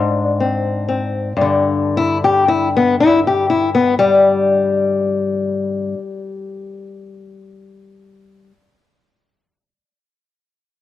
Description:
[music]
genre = acoustic country blues, solo or duo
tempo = 40 BPM (dotted quarters)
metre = 12/8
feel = straight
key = unclear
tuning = A4 = 438 Hz
[part]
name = fingerpicked old ladder-braced acoustic guitar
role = solo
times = 0.0-8.5 s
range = G2 to G4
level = -14 LUFS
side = left 3 dB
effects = cassette tape
[sound]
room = moderate spring reverb, RT60 2.4 s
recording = home recording on cassette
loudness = -14 LUFS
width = side -13 dB against mid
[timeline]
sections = 0.0-1.4 A section; 1.4-7.4 B section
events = slowing down 0.0-1.4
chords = 0.0 Ab; 1.4 G5

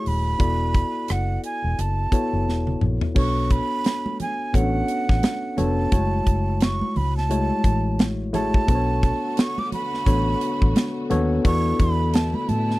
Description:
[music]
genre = lush 1970s-style soul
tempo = 87 BPM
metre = 4/4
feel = swing 58% on 16ths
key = unclear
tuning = A4 = 437 Hz
[part]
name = breathy jazz flute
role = melody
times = 0.0-12.8 s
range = F#5 to D6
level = -27 LUFS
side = right 3 dB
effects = none
[part]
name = tine electric piano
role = accompaniment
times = 0.0-12.8 s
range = G#3 to D5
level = -26 LUFS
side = left 2 dB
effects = none
[part]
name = vintage muted fingered electric bass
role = bass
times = 0.1-12.8 s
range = D#1 to A2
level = -24 LUFS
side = equal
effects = none
[part]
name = modern studio drum kit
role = drums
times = 0.1-12.8 s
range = crash cymbal, hi-hat, kick drum, rim click, snare drum, toms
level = -20 LUFS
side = equal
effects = none
[part]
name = congas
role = percussion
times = 3.2-12.7 s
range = none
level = -31 LUFS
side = right 2 dB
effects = none
[part]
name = warm studio string section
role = sustained chords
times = 8.7-12.8 s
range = D3 to F#4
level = -33 LUFS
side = left 2 dB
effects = none
[sound]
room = little or no reverb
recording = dry, close 1970s-style studio recording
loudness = -20 LUFS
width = side -18 dB against mid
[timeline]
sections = 0.0-3.2 A section; 3.2-12.8 B section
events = drum fill 2.5-3.2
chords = 0.4 E7sus4; 3.2 Bm7; 5.9 F#m7; 8.7 Bm7; 11.4 E7sus4

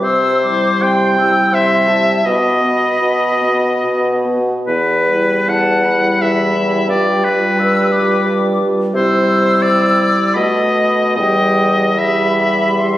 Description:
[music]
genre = classical, slow romantic movement for wind quintet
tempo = 70-89 BPM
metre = 3/4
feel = rubato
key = E minor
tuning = A4 = 440 Hz
[part]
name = bright concert flute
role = melody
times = 0.0-13.0 s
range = G5 to E6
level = -20 LUFS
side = left 2 dB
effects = none
[part]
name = bright oboe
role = second line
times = 0.0-13.0 s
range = B4 to G5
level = -16 LUFS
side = left 1 dB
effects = none
[part]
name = warm French horn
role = accompaniment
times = 0.0-13.0 s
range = G3 to B3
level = -20 LUFS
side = equal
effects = none
[part]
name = warm clarinet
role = accompaniment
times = 0.0-13.0 s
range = E4 to G4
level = -25 LUFS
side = right 2 dB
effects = none
[part]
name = warm bassoon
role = bass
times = 0.0-13.0 s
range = E2 to C3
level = -18 LUFS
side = equal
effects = none
[sound]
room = moderate scoring stage reverb, RT60 1.5 s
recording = recorded on a phone in the room, studio reverb, compression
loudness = -12 LUFS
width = side -14 dB against mid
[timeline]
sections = 0.0-13.0 A section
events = none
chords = 0.0 C; 2.3 B; 4.7 Em; 6.9 G7; 9.0 C; 10.4 B7; 11.2 Em

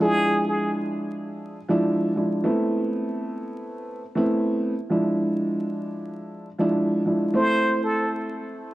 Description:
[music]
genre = hip hop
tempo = 98 BPM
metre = 4/4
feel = swing 55% on 16ths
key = A harmonic minor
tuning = A4 = 440 Hz
[part]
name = trumpet with plunger mute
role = melody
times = 0.0-0.8, 7.4-8.1 s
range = G#4 to C5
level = -24 LUFS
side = equal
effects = high-pass filter, low-pass filter, tape echo
[part]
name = dark upright piano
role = accompaniment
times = 0.0-8.7 s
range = F3 to E4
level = -23 LUFS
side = right 1 dB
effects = cassette tape, high-pass filter, low-pass filter
[sound]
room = moderate plate reverb, RT60 2.7 s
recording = dark, warm production, vinyl crackle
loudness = -21 LUFS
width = side -16 dB against mid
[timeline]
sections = 0.0-8.7 A section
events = none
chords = 0.0 E7b9; 2.5 Amadd9; 4.9 E7b9; 7.4 Am

